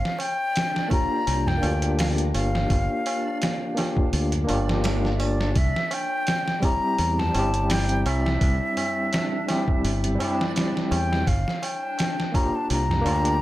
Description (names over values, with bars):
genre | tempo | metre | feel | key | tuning
trip hop | 84 BPM | 4/4 | swing 54% on 16ths | G dorian | A4 = 441 Hz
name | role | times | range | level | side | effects
mellow silver concert flute | melody | 0.0-13.4 s | D5 to Bb5 | -28 LUFS | left 1 dB | tape echo
tabla | percussion | 0.0-13.4 s | none | -35 LUFS | right 2 dB | none
backwards swelling texture | texture | 0.3-13.4 s | D4 | -38 LUFS | right 1 dB | none
trip hop sampler-style drum kit | drums | 0.1-13.4 s | hi-hat, kick drum, snare drum | -27 LUFS | equal | overdrive
overdriven tine electric piano | accompaniment | 0.9-13.4 s | G3 to G4 | -27 LUFS | left 1 dB | tremolo, low-pass filter, tape echo
modern bright fingered electric bass | bass | 1.3-13.4 s | G1 to E2 | -24 LUFS | equal | none
room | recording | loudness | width
light reverb, digital ambience | none | -21 LUFS | side -15 dB against mid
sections
0.0-13.4 A section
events
filter sweep on tine electric piano 0.0-13.4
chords
0.0 Gm7; 5.6 C; 11.3 Gm7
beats
0.56 1.27 1.98 | 2.70 3.41 4.13 4.84 | 5.55 6.27 6.98 7.70 | 8.41 9.13 9.84 10.55 | 11.27 11.98 12.70 13.41